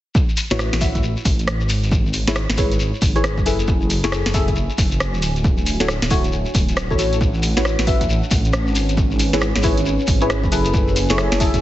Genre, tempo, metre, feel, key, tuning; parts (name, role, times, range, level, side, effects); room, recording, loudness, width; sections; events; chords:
UK garage, two-step garage; 136 BPM; 4/4; swing 63% on 16ths; A major; A4 = 440 Hz
electronic kick drum; drums; 0.1-11.6 s; -20 LUFS; equal
deep dark ambient pad; texture; 2.1-11.6 s; C#4 to A5; -29 LUFS; right 2 dB; chorus, built-in reverb, sidechain pumping
shekere; percussion; 0.2-11.6 s; -29 LUFS; left 3 dB
punchy analog drum machine; drums; 0.4-11.6 s; hi-hat, rim click, snare drum; -24 LUFS; equal
deep mellow chord stab; stabs; 0.5-11.6 s; E4 to E5; -23 LUFS; left 2 dB; chorus, vintage 12-bit sampler grit, dub echo
dark detuned saw bass; bass; 0.5-11.6 s; D1 to A1; -21 LUFS; equal
light reverb, digital ambience; heavily compressed radio sound, multiband compression, nothing above 8.0 kHz; -16 LUFS; side -14 dB against mid
0.1-11.6 A section
fade-in on ambient pad 0.1-11.6
0.1 A69; 1.7 C#m7/G#; 3.7 F#m9; 5.2 Dmaj9; 7.2 A69; 8.8 C#m7/G#